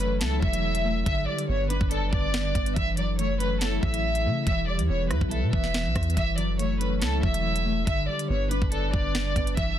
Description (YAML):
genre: hip hop, drill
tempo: 141 BPM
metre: 4/4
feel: half-time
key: F# phrygian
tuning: A4 = 441 Hz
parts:
  - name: warm studio violin section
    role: melody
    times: 0.0-9.7 s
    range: A4 to E5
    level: -30 LUFS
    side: equal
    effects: low-pass filter
  - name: mellow electric guitar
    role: accompaniment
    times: 0.0-9.8 s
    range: D3 to E5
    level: -31 LUFS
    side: left 2 dB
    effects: tremolo, low-pass filter
  - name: warbly tape-like pad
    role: sustained chords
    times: 0.0-9.8 s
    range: F#3 to B4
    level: -37 LUFS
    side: right 1 dB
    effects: chorus, built-in reverb
  - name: long sustained 808-style bass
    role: bass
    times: 0.0-9.8 s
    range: E1 to C#3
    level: -28 LUFS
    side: equal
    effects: none
  - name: drill drum kit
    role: drums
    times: 0.0-9.7 s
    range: hi-hat, kick drum, rim click, snare drum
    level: -28 LUFS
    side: equal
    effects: none
room: little or no reverb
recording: dense, heavily limited modern master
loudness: -23 LUFS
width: side -11 dB against mid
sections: 0.0-9.8 A section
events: none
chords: 0.0 F#m7; 1.1 G; 2.8 F#m7; 4.5 Em; 6.2 F#m7; 7.9 G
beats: 0.21 0.64 | 1.06 1.49 1.91 2.34 | 2.77 3.19 3.62 4.04 | 4.47 4.89 5.32 5.74 | 6.17 6.59 7.02 7.45 | 7.87 8.30 8.72 9.15 | 9.57